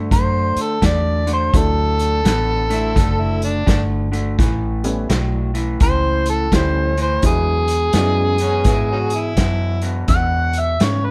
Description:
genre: electric blues shuffle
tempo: 84 BPM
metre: 4/4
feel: swing 63% on 8ths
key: A major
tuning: A4 = 441 Hz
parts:
  - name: electric guitar through a small old amp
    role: riff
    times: 0.0-11.1 s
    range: E2 to B3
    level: -27 LUFS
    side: equal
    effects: none
  - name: vintage muted fingered electric bass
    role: bass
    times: 0.0-11.1 s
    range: F#1 to G#2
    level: -23 LUFS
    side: equal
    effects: none
  - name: overdriven harmonica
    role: melody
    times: 0.1-11.1 s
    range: G#4 to F#5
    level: -22 LUFS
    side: equal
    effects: slapback echo
  - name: vintage drum kit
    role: drums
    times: 0.1-11.0 s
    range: hi-hat, kick drum, snare drum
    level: -21 LUFS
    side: equal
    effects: none
  - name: warm upright piano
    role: accompaniment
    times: 1.5-8.4 s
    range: F#3 to D5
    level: -29 LUFS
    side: equal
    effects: none
  - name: overdriven harmonica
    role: second line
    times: 2.7-3.8, 8.4-9.9 s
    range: B3 to A4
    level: -28 LUFS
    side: equal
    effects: none
room: little or no reverb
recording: none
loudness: -18 LUFS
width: mono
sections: 0.0-11.1 A section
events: none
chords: 0.0 D; 4.4 A7; 7.2 E7

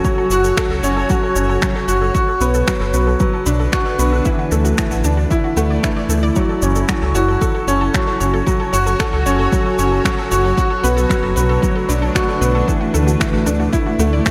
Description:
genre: piano and strings electronica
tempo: 114 BPM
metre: 4/4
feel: straight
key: F# minor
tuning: A4 = 441 Hz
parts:
  - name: granular cloud pad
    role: sustained chords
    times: 0.0-14.3 s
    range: A3 to D5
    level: -26 LUFS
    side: equal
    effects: built-in reverb, subtle chorus, sidechain pumping
  - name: analog pluck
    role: arpeggios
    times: 0.0-14.3 s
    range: E4 to F#6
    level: -29 LUFS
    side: equal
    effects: chorus, cassette tape, sidechain pumping, tape echo
  - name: felt-muted upright piano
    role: riff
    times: 0.0-14.3 s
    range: E3 to A4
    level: -20 LUFS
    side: equal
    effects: tape echo
  - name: electronic kick drum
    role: drums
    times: 0.0-14.3 s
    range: none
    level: -22 LUFS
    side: equal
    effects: overdrive
  - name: electronic shaker and finger snaps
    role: drums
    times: 0.0-14.3 s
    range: none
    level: -28 LUFS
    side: equal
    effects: none
  - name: dark detuned saw bass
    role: bass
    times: 0.3-14.2 s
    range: F#1 to D2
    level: -20 LUFS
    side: equal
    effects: sidechain pumping
room: moderate lush hall reverb, RT60 1.9 s, digital ambience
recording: dreamy mix soaked in reverb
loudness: -16 LUFS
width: mono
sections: 0.0-14.3 A section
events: none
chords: 0.0 F#m; 2.2 Bm7; 4.3 Dadd9; 6.4 F#m; 10.6 Bm7; 12.7 Dadd9

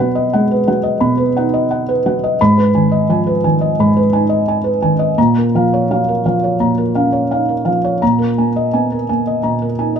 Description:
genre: neoclassical minimalist piano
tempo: 86 BPM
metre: 4/4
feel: rubato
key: G# dorian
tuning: A4 = 445 Hz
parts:
  - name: felt-muted upright piano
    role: solo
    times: 0.0-10.0 s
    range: G#2 to B5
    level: -12 LUFS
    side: equal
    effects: none
room: moderate stone room reverb, RT60 1.4 s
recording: minimal, uncompressed stereo recording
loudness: -12 LUFS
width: side -7 dB against mid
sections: 0.0-10.0 A section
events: none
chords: 0.0 B; 2.4 G#m; 5.2 A#m; 8.0 D#sus4/A#

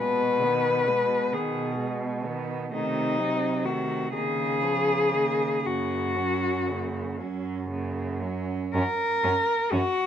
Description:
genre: classical, lyrical piece for cello ensemble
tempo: 38-45 BPM (dotted quarters)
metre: 6/8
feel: rubato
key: F# major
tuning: A4 = 440 Hz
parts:
  - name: muted cello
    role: melody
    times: 0.0-10.1 s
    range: Eb4 to B4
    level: -25 LUFS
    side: left 3 dB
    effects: none
  - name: muted cello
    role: second line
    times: 0.0-8.7 s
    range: G#3 to C#4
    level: -35 LUFS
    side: right 9 dB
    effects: none
  - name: muted cello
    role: accompaniment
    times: 0.0-9.8 s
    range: B2 to C#4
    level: -35 LUFS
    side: equal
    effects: none
  - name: muted cello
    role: bass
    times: 0.0-9.8 s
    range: F#2 to C#3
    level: -31 LUFS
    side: right 2 dB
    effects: none
room: light reverb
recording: none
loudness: -24 LUFS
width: side -9 dB against mid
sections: 0.0-8.7 A section; 8.7-10.1 B section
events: none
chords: 0.0 G#m/B; 2.7 Cdim7; 4.1 C#13; 5.7 F#

